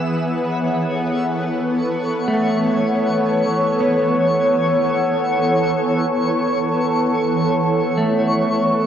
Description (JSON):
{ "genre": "ambient", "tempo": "free time", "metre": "none", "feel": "none", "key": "unclear", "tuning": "A4 = 440 Hz", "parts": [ { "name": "shimmering ambient pad", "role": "sustained chords", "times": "0.0-8.9 s", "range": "E3 to F#5", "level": "-18 LUFS", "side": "equal", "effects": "chorus, built-in reverb, cassette tape" }, { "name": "twinkling granular texture", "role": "texture", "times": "0.0-8.9 s", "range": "C#5 to E5", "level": "-25 LUFS", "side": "left 1 dB", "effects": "built-in reverb, cassette tape" }, { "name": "clean electric guitar", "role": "arpeggios", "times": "2.3-8.9 s", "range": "A3 to B3", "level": "-23 LUFS", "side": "equal", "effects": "vibrato effect, cassette tape, analog delay" } ], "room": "wet spring reverb, RT60 1.7 s", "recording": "home recording on cassette", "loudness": "-16 LUFS", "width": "side -9 dB against mid", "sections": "0.0-8.9 A section", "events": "none", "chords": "0.1 A/E", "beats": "free time" }